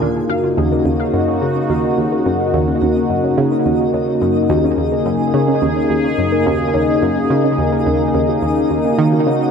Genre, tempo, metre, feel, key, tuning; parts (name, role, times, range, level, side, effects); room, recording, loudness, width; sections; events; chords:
ambient, sequencer-driven space music; 107 BPM; 4/4; straight; Eb minor; A4 = 437 Hz
sweeping resonant pad; sustained chords; 0.0-9.5 s; Db3 to Ab4; -15 LUFS; left 1 dB; chorus
warbly dusty pluck; arpeggios; 0.0-9.4 s; Db4 to Db5; -25 LUFS; moving between left 1 dB and right 6 dB; chorus, auto-pan, tape echo
analog pluck; riff; 0.0-9.5 s; Eb2 to Eb3; -20 LUFS; right 1 dB; chorus, tape echo
twinkling granular texture; texture; 0.0-9.5 s; Eb5; -36 LUFS; left 2 dB; built-in reverb, wide subtle chorus
wet plate reverb, RT60 2.4 s; dreamy mix soaked in reverb; -14 LUFS; side -6 dB against mid
0.0-9.5 A section
fade-in on synth texture 0.0-9.5; filter sweep on synth arpeggio sound 0.0-9.5
0.0 Ebm7